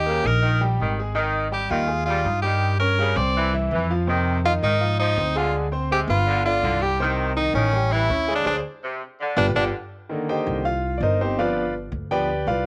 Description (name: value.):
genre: latin.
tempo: 164 BPM.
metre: 4/4.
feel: straight.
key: C minor.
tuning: A4 = 440 Hz.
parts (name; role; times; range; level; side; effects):
edgy tenor saxophone; melody; 0.0-9.6 s; Db4 to D5; -25 LUFS; equal; cassette tape.
bright concert grand piano; accompaniment; 0.0-12.7 s; C3 to Eb6; -28 LUFS; equal; cassette tape.
upright bass; bass; 0.0-12.7 s; G1 to Ab2; -27 LUFS; equal; none.
edgy saxophone section; second line; 0.1-9.7 s; C3 to G3; -30 LUFS; equal; cassette tape.
room: light reverb.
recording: home recording on cassette.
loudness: -22 LUFS.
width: mono.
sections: 0.0-9.9 A section; 9.9-12.7 B section.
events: band accent 8.5-9.9; grand piano solo 9.9-12.7.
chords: 0.0 Eb; 1.2 Ab5; 2.6 Gdim; 3.4 C; 4.1 Fm7; 5.5 G7b9; 6.3 G7; 7.0 Cm; 7.7 A7; 8.5 Ab; 9.2 G7; 9.9 Cm7; 11.4 G7.